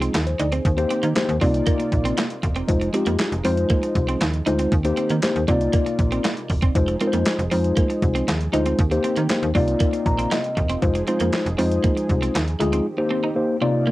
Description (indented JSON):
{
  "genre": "early-eighties boogie funk",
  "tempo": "118 BPM",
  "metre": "4/4",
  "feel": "straight",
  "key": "F dorian",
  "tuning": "A4 = 439 Hz",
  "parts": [
    { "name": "mellow tine electric piano", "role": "accompaniment", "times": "0.0-13.9 s", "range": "C3 to Bb5", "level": "-22 LUFS", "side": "left 2 dB", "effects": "slow stereo tremolo, cassette tape, plate reverb" },
    { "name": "brassy analog pad", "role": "sustained chords", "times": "0.0-13.9 s", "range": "C3 to D5", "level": "-34 LUFS", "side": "right 1 dB", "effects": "chorus, cassette tape, plate reverb" },
    { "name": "electric guitar at the edge of break-up", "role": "riff", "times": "0.0-13.9 s", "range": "Bb3 to Eb4", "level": "-28 LUFS", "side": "right 4 dB", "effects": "analog chorus, cassette tape" },
    { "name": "slap-like FM bass", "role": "bass", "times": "0.0-12.8 s", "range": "E1 to Eb3", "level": "-24 LUFS", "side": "equal", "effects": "none" },
    { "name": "crisp 8-bit digital drum machine", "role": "drums", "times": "0.0-12.8 s", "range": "handclaps, hi-hat, kick drum, snare drum", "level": "-23 LUFS", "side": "equal", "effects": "cassette tape" }
  ],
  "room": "moderate small room reverb, RT60 0.5 s",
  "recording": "home recording on cassette",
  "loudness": "-18 LUFS",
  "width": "side -17 dB against mid",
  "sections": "0.0-13.9 A section",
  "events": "tine electric piano fill 9.8-10.8",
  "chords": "0.0 Fm7; 0.7 Eb6; 1.4 Cm11; 2.7 Fm7; 4.7 Eb6; 5.5 Cm11; 6.8 Fm7; 8.8 Eb6; 9.5 Cm11; 10.8 Fm7; 12.9 Eb6"
}